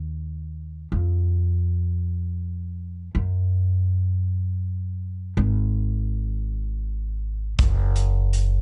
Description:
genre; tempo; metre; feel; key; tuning
six-eight pop ballad; 54 BPM (dotted quarters); 6/8; straight; unclear; A4 = 440 Hz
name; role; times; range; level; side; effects
upright bass; bass; 0.0-8.6 s; Gb1 to Gb2; -25 LUFS; equal; none
natural country drum kit; drums; 7.6-8.5 s; hi-hat, kick drum; -26 LUFS; equal; none
room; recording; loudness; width
little or no reverb; nothing above 10.7 kHz; -25 LUFS; mono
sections
0.0-8.6 A section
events
none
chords
none

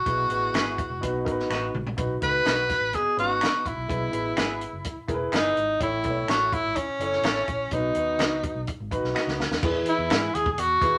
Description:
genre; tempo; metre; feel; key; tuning
uptempo 1960s-style soul; 126 BPM; 4/4; straight; E major; A4 = 441 Hz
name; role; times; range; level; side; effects
bright tenor saxophone; melody; 0.0-11.0 s; C#4 to B4; -27 LUFS; equal; none
warm concert grand piano; accompaniment; 0.1-11.0 s; A2 to C#5; -33 LUFS; equal; none
vintage muted fingered electric bass; bass; 0.1-11.0 s; E1 to G#2; -37 LUFS; equal; none
compact cocktail drum kit; drums; 0.1-10.9 s; crash cymbal, hi-hat, kick drum, snare drum, toms; -31 LUFS; equal; none
clean electric guitar; stabs; 0.5-10.3 s; B3 to E5; -34 LUFS; equal; tremolo
finger snaps; percussion; 0.5-10.2 s; none; -37 LUFS; equal; none
room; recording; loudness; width
wet studio ambience, RT60 0.5 s; none; -26 LUFS; mono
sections
0.0-9.6 A section; 9.6-11.0 B section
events
drum fill 1.5-2.0, 9.2-9.6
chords
0.1 E; 1.0 B; 3.9 E; 5.8 A; 7.7 B; 9.6 E

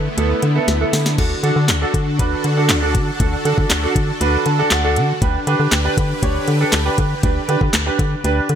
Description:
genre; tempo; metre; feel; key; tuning
dance-pop; 119 BPM; 4/4; straight; D major; A4 = 440 Hz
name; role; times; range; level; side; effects
clear grand piano; accompaniment; 0.0-8.5 s; B3 to A5; -20 LUFS; right 3 dB; lush chorus, sidechain pumping
supersaw pad; sustained chords; 0.0-8.6 s; D3 to B4; -24 LUFS; equal; ensemble chorus, sidechain pumping
organ-like FM bass; bass; 0.0-8.6 s; D2 to D3; -19 LUFS; left 1 dB; sidechain pumping
smooth R&B drum kit; drums; 0.2-8.6 s; crash cymbal, handclaps, hi-hat, kick drum, snare drum; -19 LUFS; left 1 dB; none
room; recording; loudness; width
light reverb, digital ambience; bright 1980s-style digital production; -15 LUFS; side -9 dB against mid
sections
0.0-8.6 A section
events
drum fill 0.7-1.2; grand piano fill 4.2-5.2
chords
0.0 Asus2/D; 1.2 D; 5.2 G/D

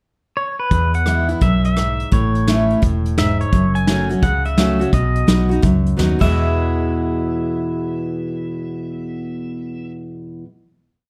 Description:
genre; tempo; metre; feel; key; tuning
honky-tonk and classic country; 171 BPM; 4/4; swing 64% on 8ths; E major; A4 = 440 Hz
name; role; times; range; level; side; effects
pedal steel guitar; second line; 0.4-9.9 s; B4 to G#5; -26 LUFS; equal; none
picked steel-string acoustic guitar; accompaniment; 0.7-10.5 s; E2 to F#4; -22 LUFS; equal; none
vintage muted fingered electric bass; bass; 0.7-10.4 s; E1 to E2; -23 LUFS; equal; none
soft brush drum kit; drums; 0.7-6.3 s; crash cymbal, hi-hat, kick drum, rim click, snare drum; -22 LUFS; equal; none
room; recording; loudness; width
light reverb; dark, warm production; -18 LUFS; mono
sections
0.0-0.7 pickup bar; 0.7-6.3 interlude; 6.3-9.2 final hit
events
pedal steel guitar solo 0.7-6.3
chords
0.0 N.C.; 0.7 E; 2.1 A; 3.5 F#m; 4.9 B; 6.2 E

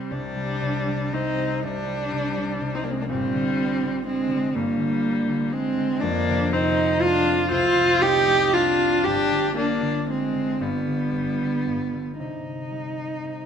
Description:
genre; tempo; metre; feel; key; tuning
celtic folk, Celtic slow air; 38-41 BPM (dotted quarters); 6/8; rubato; unclear; A4 = 441 Hz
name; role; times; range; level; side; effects
dark cello; melody; 0.0-13.5 s; Bb3 to G4; -23 LUFS; right 2 dB; none
warm viola; second line; 0.0-12.2 s; G3 to Eb4; -27 LUFS; left 5 dB; none
concert harp; accompaniment; 0.0-13.5 s; F1 to C4; -29 LUFS; left 3 dB; none
room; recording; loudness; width
light reverb; minimal, uncompressed stereo recording; -21 LUFS; side -7 dB against mid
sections
0.1-12.2 A section; 12.2-13.5 B section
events
none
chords
0.0 C5; 3.1 Gm; 6.0 Fsus4; 9.0 G5; 12.2 Cm

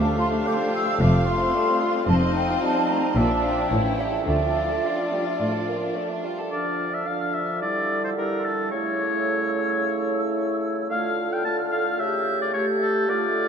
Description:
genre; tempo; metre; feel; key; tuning
quick classical-period movement for symphony orchestra; 110 BPM; 4/4; straight; D minor; A4 = 440 Hz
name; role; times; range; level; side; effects
rich chamber violin section; melody; 0.0-6.3 s; C#5 to F5; -35 LUFS; right 1 dB; none
rich chamber violin section; second line; 0.0-6.5 s; A3 to A4; -32 LUFS; right 1 dB; none
small flute group; second line; 0.0-13.5 s; D5 to G6; -28 LUFS; equal; none
warm oboe; second line; 0.0-13.5 s; A4 to A5; -28 LUFS; left 1 dB; none
mellow bassoon; accompaniment; 0.0-13.5 s; C#3 to Bb3; -31 LUFS; right 2 dB; none
rich chamber viola section; accompaniment; 0.0-6.3 s; A3 to F4; -31 LUFS; left 3 dB; none
mellow French horn section; sustained chords; 0.0-13.5 s; E3 to G4; -28 LUFS; equal; none
clear chamber cello section; bass; 0.0-5.8 s; D2 to D3; -26 LUFS; equal; none
clear chamber double bass section; bass; 0.0-4.7 s; F1 to D2; -26 LUFS; equal; none
timpani; percussion; 0.0-0.7 s; D3; -37 LUFS; right 1 dB; none
room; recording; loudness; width
wet cathedral reverb, RT60 5.8 s; in a vast, echoing space; -21 LUFS; side -7 dB against mid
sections
0.0-6.5 A section; 6.5-13.5 B section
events
none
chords
0.0 Dm; 1.0 F; 2.1 F7; 3.2 Bb; 3.7 A7; 4.3 Dm; 7.6 C13/D (rootless); 8.7 A/C#; 10.9 Dm; 12.0 A7/C#

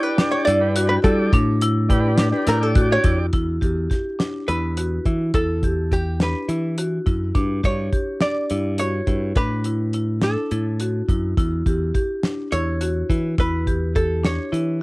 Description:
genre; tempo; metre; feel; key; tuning
progressive instrumental, band music in an uneven meter; 209 BPM (eighths); 7/8; straight; E dorian; A4 = 439 Hz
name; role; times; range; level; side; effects
archtop guitar, miked and amplified; melody; 0.0-14.8 s; G4 to D5; -24 LUFS; right 1 dB; cassette tape
tonewheel organ; accompaniment; 0.0-3.3 s; D4 to D5; -25 LUFS; equal; slow rotary speaker, cassette tape
marimba with medium hard mallets; arpeggios; 0.0-14.8 s; D4 to G4; -25 LUFS; left 1 dB; cassette tape
cloth-damped thuddy drum kit; drums; 0.2-14.7 s; hi-hat, kick drum, snare drum; -21 LUFS; equal; cassette tape
modern bright picked electric bass; bass; 0.5-14.8 s; E2 to G3; -22 LUFS; equal; none
room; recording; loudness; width
little or no reverb; home recording on cassette; -18 LUFS; side -22 dB against mid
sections
0.0-3.3 A section; 3.3-14.8 B section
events
hollow-body jazz guitar solo 0.0-3.3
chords
0.0 G; 1.3 Asus4; 3.3 Em; 7.4 G5; 9.4 Asus4; 11.4 Em

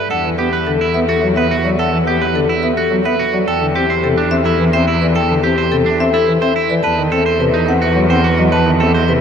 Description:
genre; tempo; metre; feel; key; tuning
classical, minimalist pattern music; 107 BPM; 3/4; straight; E minor; A4 = 441 Hz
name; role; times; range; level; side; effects
marimba with medium hard mallets; melody; 0.0-9.2 s; G4 to A5; -17 LUFS; left 4 dB; none
electric guitar at the edge of break-up; arpeggios; 0.0-9.1 s; D4 to C5; -19 LUFS; right 6 dB; none
rich cello; bass; 0.1-9.2 s; E2; -18 LUFS; right 1 dB; none
pipe organ, cornet; accompaniment; 0.2-9.2 s; C3 to C4; -20 LUFS; equal; none
room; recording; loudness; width
wet huge ambient reverb, RT60 8.0 s; in a vast, echoing space; -12 LUFS; side -7 dB against mid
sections
0.1-9.2 A section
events
none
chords
0.1 E7sus2; 3.5 Am7/E; 6.8 B7b9/E

